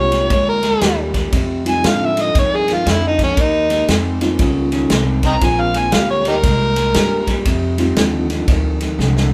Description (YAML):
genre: electric blues shuffle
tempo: 118 BPM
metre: 4/4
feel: swing 64% on 8ths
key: Bb mixolydian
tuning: A4 = 439 Hz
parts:
  - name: overdriven harmonica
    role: melody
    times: 0.0-7.4 s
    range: Db4 to Bb5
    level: -19 LUFS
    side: equal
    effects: none
  - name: reed electric piano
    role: accompaniment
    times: 0.0-8.4 s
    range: G3 to F4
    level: -24 LUFS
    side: equal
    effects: fast tremolo
  - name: electric guitar through a small old amp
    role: riff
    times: 0.0-9.3 s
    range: F2 to Db4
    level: -24 LUFS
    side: equal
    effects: none
  - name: upright bass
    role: bass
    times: 0.0-9.3 s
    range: Bb1 to A2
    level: -24 LUFS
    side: equal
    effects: none
  - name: natural country drum kit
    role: drums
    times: 0.1-9.3 s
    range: kick drum, ride cymbal, snare drum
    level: -21 LUFS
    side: equal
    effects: none
room: moderate large studio reverb, RT60 1.2 s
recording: band playing live in one room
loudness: -16 LUFS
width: mono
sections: 0.0-9.3 A section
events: harmonica solo 0.0-9.3; drum fill 9.0-9.3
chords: 0.0 Bb9; 1.3 F9; 3.4 Eb9; 5.4 Bb9; 7.5 F9